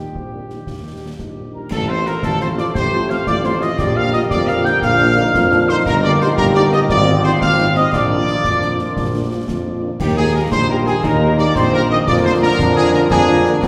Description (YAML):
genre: military-style march for wind band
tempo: 116 BPM (dotted quarters)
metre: 6/8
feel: straight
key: Bb major, Eb major from 5.9 s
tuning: A4 = 439 Hz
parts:
  - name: dark trumpet section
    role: melody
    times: 0.0-13.7 s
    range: G4 to G5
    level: -23 LUFS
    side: equal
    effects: none
  - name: warm euphonium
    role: second line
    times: 0.0-13.7 s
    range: G3 to G4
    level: -26 LUFS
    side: equal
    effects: none
  - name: dark French horn section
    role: accompaniment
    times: 0.0-13.5 s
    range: F3 to G4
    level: -28 LUFS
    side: equal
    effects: none
  - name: warm tuba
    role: bass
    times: 0.0-13.7 s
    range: G1 to F2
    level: -21 LUFS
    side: equal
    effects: none
  - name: concert bass drum, concert snare drum and clash cymbals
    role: drums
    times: 0.1-13.7 s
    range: none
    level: -26 LUFS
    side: equal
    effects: none
  - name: mellow wooden piccolo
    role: second line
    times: 1.5-13.7 s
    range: G5 to G6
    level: -23 LUFS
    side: equal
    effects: none
  - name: mellow trombone section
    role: sustained chords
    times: 1.7-13.7 s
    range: D3 to C4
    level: -27 LUFS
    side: equal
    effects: none
room: wet church reverb, RT60 3.2 s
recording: recorded in a church or concert hall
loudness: -16 LUFS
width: mono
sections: 0.0-1.7 A section; 1.7-10.0 B section; 10.0-13.7 A section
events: none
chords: 0.0 Eb; 1.7 F/A; 3.8 Bb; 5.9 Eb/G; 6.9 Fm7/Ab; 7.9 Bb; 10.0 Eb; 12.1 Bb7/F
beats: 0.15 | 0.68 1.19 | 1.71 2.23 | 2.75 3.27 | 3.79 4.30 | 4.82 5.34 | 5.86 6.38 | 6.89 7.41 | 7.93 8.45 | 8.97 9.48 | 10.00 10.52 | 11.04 11.55 | 12.07 12.59 | 13.11 13.63